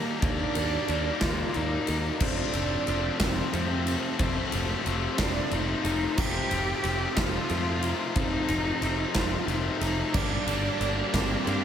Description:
post-rock; 60 BPM (dotted quarters); 6/8; straight; A4 = 440 Hz
dark cello; melody; 0.0-11.6 s; A3 to G4; -31 LUFS; right 2 dB; slapback echo
warm symphonic string section; sustained chords; 0.0-11.6 s; F4 to Eb6; -42 LUFS; right 1 dB
electric guitar through a small old amp; arpeggios; 0.0-11.6 s; F2 to Eb4; -38 LUFS; equal
mellow electric guitar; arpeggios; 0.0-11.6 s; A4 to D5; -43 LUFS; right 6 dB
distorted electric guitar; riff; 0.0-11.6 s; F2 to Eb4; -32 LUFS; left 6 dB; overdrive, slapback echo
modern bright picked electric bass; bass; 0.2-11.6 s; F1 to G2; -32 LUFS; equal
huge arena drum kit; drums; 0.2-11.6 s; crash cymbal, kick drum, ride cymbal, snare drum; -30 LUFS; equal
tight distorted guitar; riff; 10.1-11.6 s; G2 to G4; -34 LUFS; right 11 dB; distortion, slapback echo
moderate lush hall reverb, RT60 2.5 s; big arena sound; -25 LUFS; side -9 dB against mid
0.0-11.6 A section
0.0 Ebmaj7; 2.2 F7; 10.2 Gmadd9
| 0.23 1.22 | 2.21 3.20 | 4.20 5.19 | 6.18 7.17 | 8.17 9.16 | 10.15 11.14

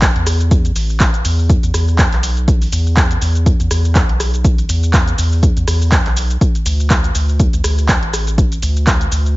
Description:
deep house; 122 BPM; 4/4; swing 56% on 16ths; A4 = 439 Hz
round analog bass; bass; 0.0-9.4 s; A1 to E2; -16 LUFS; equal; sidechain pumping
electronic kick drum; drums; 0.0-9.0 s; -14 LUFS; equal; overdrive
punchy analog drum machine; drums; 0.0-9.3 s; handclaps, hi-hat, rim click, shaker; -20 LUFS; equal
little or no reverb; nothing above 7.6 kHz; -12 LUFS; side -20 dB against mid
0.0-9.4 A section
0.02 0.51 1.00 | 1.50 1.99 2.48 2.97 | 3.46 3.96 4.45 4.94 | 5.43 5.92 6.41 6.91 | 7.40 7.89 8.38 8.87 | 9.37

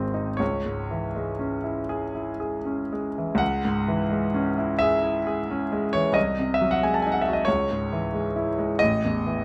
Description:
classical, romantic nocturne for solo piano; 39-46 BPM (dotted quarters); 6/8; rubato; C# minor; A4 = 440 Hz
clear grand piano; solo; 0.0-9.4 s; G#1 to A5; -25 LUFS; equal
moderate large studio reverb, RT60 1.2 s; close, detailed microphones; -25 LUFS; mono
0.0-3.4 A section; 3.4-9.4 B section
0.4 C#m; 6.2 G#7/B#; 7.5 C#m; 8.8 A5
| 0.40 1.89 | 3.40 4.80 | 6.16 7.46 | 8.80

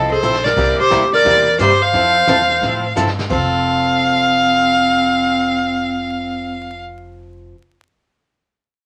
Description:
country, western swing; 175 BPM; 4/4; swing 64% on 8ths; F major; A4 = 440 Hz
rich fiddle; melody; 0.0-6.8 s; C5 to F5; -18 LUFS; equal
picked swing-style acoustic guitar; accompaniment; 0.0-7.6 s; C3 to A4; -25 LUFS; equal
upright bass; bass; 0.0-7.5 s; F1 to A2; -28 LUFS; equal
dark clarinet; second line; 0.1-6.8 s; C4 to C5; -22 LUFS; equal
vintage brush drum kit; drums; 0.2-3.6 s; brushed snare drum, crash cymbal, hi-hat, kick drum, snare drum; -29 LUFS; equal
wet club reverb, RT60 0.6 s; vinyl crackle; -15 LUFS; mono
0.6-3.3 A section; 3.3-6.1 B section
drum fill 0.2-0.6, 3.0-3.3
0.0 Fmaj7; 0.6 C7; 1.9 Fmaj7; 3.3 F
0.23 | 0.57 0.91 1.25 1.60 | 1.94 2.28 2.62 2.97 | 3.31 3.65 4.00 4.34 | 4.68 5.03 5.37 5.71

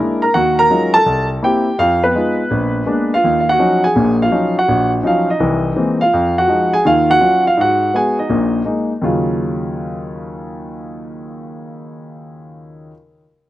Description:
solo jazz; 166 BPM; 4/4; swing 65% on 8ths; Eb minor; A4 = 439 Hz
warm grand piano; solo; 0.0-12.9 s; Bb1 to A#5; -14 LUFS; equal; slapback echo
little or no reverb; recorded outdoors, with no room sound; -13 LUFS; side -14 dB against mid
0.0-6.1 A section; 6.1-9.0 B section; 9.0-11.9 C section
0.3 Ebm11; 1.1 C7; 1.8 Fm7b5; 2.5 Bb7b9; 3.2 Ebm9; 5.4 C7alt; 6.1 Fm7; 6.8 Ebm9; 7.6 Abm7; 8.3 Bb7sus4; 9.0 Ebm9
| 0.34 0.70 1.06 1.42 | 1.78 2.14 2.50 2.87 | 3.23 3.59 3.95 4.31 | 4.67 5.03 5.39 5.75 | 6.12 6.48 6.84 7.20 | 7.57 7.93 8.29 8.65 | 9.02 9.38 9.74 10.11 | 10.47 10.83 11.19 11.56

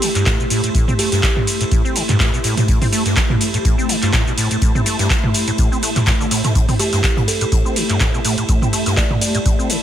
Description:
acid house; 124 BPM; 4/4; swing 55% on 16ths; A minor; A4 = 440 Hz
buzzing kalimba; melody; 0.0-1.2, 6.8-9.4 s; G4 to D5; -26 LUFS; right 3 dB; ping-pong delay
string machine, full ensemble; sustained chords; 0.0-9.8 s; A3 to A5; -26 LUFS; equal; ensemble chorus, sidechain pumping
deep acid bass; riff; 0.0-9.8 s; G2 to C4; -22 LUFS; equal; overdrive, analog chorus, cassette tape
electro analog drum machine; drums; 0.0-9.8 s; handclaps, hi-hat, ride cymbal, shaker, toms; -19 LUFS; right 1 dB
unplugged drum kit; drums; 0.0-9.8 s; hi-hat, snare drum; -30 LUFS; left 1 dB; sidechain pumping on hats, high-pass filter on hats, high-pass filter on snare, high-pass filter on room
granular cloud pad; texture; 0.1-9.8 s; A3 to B5; -26 LUFS; equal; built-in reverb, sidechain pumping
electronic kick drum; drums; 0.3-9.6 s; -18 LUFS; equal
light reverb, studio ambience; -14 LUFS; side -10 dB against mid
0.0-9.8 A section
0.0 Am
0.26 | 0.75 1.23 1.72 2.20 | 2.68 3.17 3.65 4.13 | 4.62 5.10 5.59 6.07 | 6.55 7.04 7.52 8.01 | 8.49 8.97 9.46

